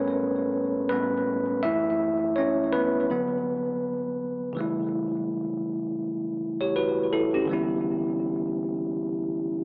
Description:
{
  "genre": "R&B",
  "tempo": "82 BPM",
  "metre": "4/4",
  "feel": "swing 58% on 16ths",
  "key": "unclear",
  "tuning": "A4 = 440 Hz",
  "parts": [
    { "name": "bell-like tine electric piano", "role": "solo", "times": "0.0-9.6 s", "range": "F#2 to E5", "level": "-24 LUFS", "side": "equal", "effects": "fast stereo tremolo, tape echo" }
  ],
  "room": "light reverb, digital ambience",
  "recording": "dry, gritty hardware recording, transformer saturation, AM radio sound",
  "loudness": "-24 LUFS",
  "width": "side -35 dB against mid",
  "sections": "0.0-4.6 A section; 4.6-9.6 B section",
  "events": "tine electric piano solo 0.0-4.6; tine electric piano fill 9.3-9.6",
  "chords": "0.0 A9; 1.6 F#m7; 3.1 D6; 4.6 A7; 7.5 Em7"
}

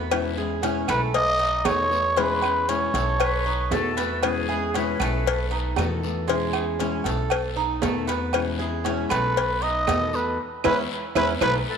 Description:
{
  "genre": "latin, Cuban son and guajira",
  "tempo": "117 BPM",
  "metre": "4/4",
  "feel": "straight",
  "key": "E major",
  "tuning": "A4 = 440 Hz",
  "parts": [
    { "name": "nylon-string guitar", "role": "accompaniment", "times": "0.0-11.6 s", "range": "B2 to F#4", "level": "-30 LUFS", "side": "left 9 dB", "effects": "none" },
    { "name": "Cuban tres", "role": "arpeggios", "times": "0.0-11.6 s", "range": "G#3 to A4", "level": "-29 LUFS", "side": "right 9 dB", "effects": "tape echo" },
    { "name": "upright bass", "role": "bass", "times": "0.0-11.6 s", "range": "B1 to E2", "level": "-29 LUFS", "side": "equal", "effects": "none" },
    { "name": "agogo bells and timbales", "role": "percussion", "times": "0.1-11.5 s", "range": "none", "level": "-32 LUFS", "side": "right 12 dB", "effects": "none" },
    { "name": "claves", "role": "percussion", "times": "0.1-11.5 s", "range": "none", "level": "-36 LUFS", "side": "right 12 dB", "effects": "none" },
    { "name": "cowbell", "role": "percussion", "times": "0.1-11.5 s", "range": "none", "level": "-29 LUFS", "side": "left 10 dB", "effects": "none" },
    { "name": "guiro", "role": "percussion", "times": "0.1-11.5 s", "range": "none", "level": "-39 LUFS", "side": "left 12 dB", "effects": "none" },
    { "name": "trumpet with cup mute", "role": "melody", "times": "0.9-4.0, 9.1-11.5 s", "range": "B4 to D#5", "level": "-24 LUFS", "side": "equal", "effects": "tape echo" },
    { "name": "breathy bright silver concert flute", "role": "second line", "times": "3.2-5.8, 11.7-11.8 s", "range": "G#4 to B4", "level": "-30 LUFS", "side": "left 7 dB", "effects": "none" }
  ],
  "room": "moderate echo chamber reverb, RT60 2.4 s",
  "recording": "1960s-style stereo with parts hard left and right",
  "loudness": "-21 LUFS",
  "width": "side -7 dB against mid",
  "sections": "0.0-11.8 A section",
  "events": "band accent 10.4-11.8",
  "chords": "0.1 E6; 1.1 B7; 2.2 E6; 3.2 B7; 4.2 E6; 5.3 B7; 6.3 E6; 7.3 B7; 8.3 E6; 9.4 B7; 10.4 E6"
}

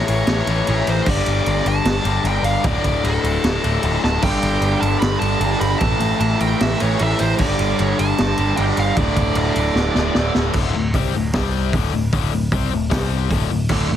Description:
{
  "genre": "hard rock",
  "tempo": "152 BPM",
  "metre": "4/4",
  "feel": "straight",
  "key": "unclear",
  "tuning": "A4 = 440 Hz",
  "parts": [
    { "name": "bluesy overdriven lead guitar", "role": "melody", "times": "0.0-10.3 s", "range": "A4 to B5", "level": "-24 LUFS", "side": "right 4 dB", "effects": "distortion, slapback echo" },
    { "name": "distorted electric guitar", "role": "riff", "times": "0.0-14.0 s", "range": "D2 to C4", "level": "-23 LUFS", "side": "left 12 dB", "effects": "overdrive" },
    { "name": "picked electric bass", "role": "bass", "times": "0.1-14.0 s", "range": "D1 to C2", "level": "-21 LUFS", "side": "right 1 dB", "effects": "none" },
    { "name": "raw garage drum kit", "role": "drums", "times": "0.1-13.8 s", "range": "crash cymbal, hi-hat, kick drum, ride cymbal, snare drum", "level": "-22 LUFS", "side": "equal", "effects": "none" },
    { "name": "distorted electric guitar", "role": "riff", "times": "4.2-10.6, 13.7-14.0 s", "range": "D2 to A3", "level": "-24 LUFS", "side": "right 12 dB", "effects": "overdrive" }
  ],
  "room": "small room reverb",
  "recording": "heavily compressed radio sound",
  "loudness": "-16 LUFS",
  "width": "side -10 dB against mid",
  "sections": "0.0-10.6 A section; 10.6-14.0 B section",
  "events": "drum fill 4.0, 9.8-10.6",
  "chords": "0.0 A; 1.1 G5; 2.7 D5; 4.2 G5; 5.8 A5; 7.4 G5; 9.0 D5; 11.3 C5; 11.7 D5; 12.9 C5; 13.3 D5"
}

